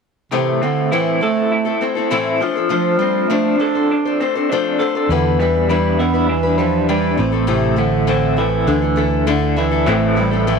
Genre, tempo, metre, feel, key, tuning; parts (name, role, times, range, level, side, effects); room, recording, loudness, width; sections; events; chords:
rock; 100 BPM; 4/4; straight; A minor; A4 = 440 Hz
warm bass clarinet; melody; 0.3-10.6 s; C3 to D4; -20 LUFS; right 10 dB
picked acoustic archtop guitar; accompaniment; 0.3-10.6 s; A2 to C5; -19 LUFS; left 10 dB
electric guitar through a small old amp; riff; 0.3-10.6 s; E2 to A4; -20 LUFS; equal; tremolo
fingered electric bass; bass; 5.1-10.6 s; A1 to E2; -20 LUFS; equal
wet spring reverb, RT60 2.1 s; 1960s-style stereo with parts hard left and right; -14 LUFS; side -5 dB against mid
0.3-9.9 A section
0.3 Am; 2.4 F6; 5.1 Em7; 7.2 Am; 8.7 Dsus2; 9.9 Am